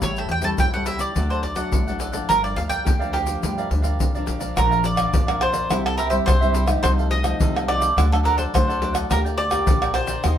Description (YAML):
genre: samba and choro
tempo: 106 BPM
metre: 4/4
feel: straight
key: G minor, Bb major from 4.6 s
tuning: A4 = 439 Hz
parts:
  - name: bowl-back mandolin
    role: melody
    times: 0.0-10.4 s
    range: G4 to A5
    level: -24 LUFS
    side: right 2 dB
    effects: none
  - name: cavaquinho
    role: accompaniment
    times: 0.0-10.4 s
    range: D4 to G5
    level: -29 LUFS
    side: right 3 dB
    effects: none
  - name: nylon-string guitar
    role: accompaniment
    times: 0.0-10.4 s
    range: F2 to G4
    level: -29 LUFS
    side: left 3 dB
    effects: none
  - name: upright bass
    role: bass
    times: 0.0-10.4 s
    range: G1 to E2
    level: -24 LUFS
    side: equal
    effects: none
  - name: tube shaker, surdo, pandeiro and tamborim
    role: percussion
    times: 0.0-10.4 s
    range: none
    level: -23 LUFS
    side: equal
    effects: none
room: moderate studio reverb, RT60 0.6 s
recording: band playing live in one room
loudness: -18 LUFS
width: side -10 dB against mid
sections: 0.0-4.6 A section; 4.6-10.4 B section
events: none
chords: 0.0 A7; 1.2 D; 2.3 Gm7; 4.6 Bb; 5.7 C; 6.8 F7/C; 8.0 D; 9.1 Gm7/D